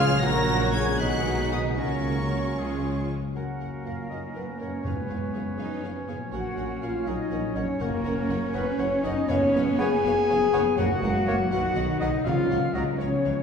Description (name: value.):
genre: classical, dramatic, fast romantic movement for symphony orchestra.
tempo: 80 BPM (dotted quarters).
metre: 6/8.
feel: straight.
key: F# major.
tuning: A4 = 440 Hz.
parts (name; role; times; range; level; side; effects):
rich studio violin section; melody; 0.0-13.3 s; E#5 to A#6; -36 LUFS; left 2 dB; none.
clear clarinet; second line; 0.0-13.4 s; E#4 to G#5; -35 LUFS; equal; none.
large flute ensemble; second line; 0.0-13.4 s; A#4 to A#5; -36 LUFS; equal; none.
warm oboe; second line; 0.0-12.8 s; G#4 to D#5; -38 LUFS; equal; none.
warm symphonic violin section; second line; 0.0-13.3 s; E#4 to D#5; -40 LUFS; left 1 dB; none.
clear symphonic viola section; accompaniment; 0.0-13.3 s; F#3 to B4; -41 LUFS; right 3 dB; none.
warm bassoon; accompaniment; 0.0-12.8 s; F#3 to F#4; -37 LUFS; right 2 dB; none.
dark French horn section; sustained chords; 0.0-13.4 s; A#3 to A#4; -28 LUFS; left 3 dB; none.
mellow trombone section; sustained chords; 0.0-13.4 s; D#3 to D#4; -38 LUFS; right 2 dB; none.
concert harp; arpeggios; 0.0-13.4 s; F#2 to B4; -34 LUFS; left 5 dB; none.
mellow tuba; bass; 0.0-13.4 s; F#1 to C#2; -36 LUFS; right 2 dB; none.
rich symphonic cello section; bass; 0.0-13.4 s; A#2 to D#4; -33 LUFS; right 2 dB; none.
rich symphonic double bass section; bass; 0.0-13.3 s; F#1 to F#2; -35 LUFS; right 2 dB; none.
timpani; percussion; 4.8-13.0 s; F#2 to C#3; -33 LUFS; equal; none.
room: wet scoring stage reverb, RT60 1.6 s.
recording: heard from further back in the room.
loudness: -23 LUFS.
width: side -6 dB against mid.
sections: 0.0-3.4 A section; 3.4-13.4 B section.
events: none.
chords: 0.2 F#/A#; 1.0 G#m7/B; 1.8 F#/C#; 3.4 F#; 6.3 F#/A#; 7.8 F#; 9.3 C#7/F#; 10.8 F#; 11.5 B; 12.3 F#/C#.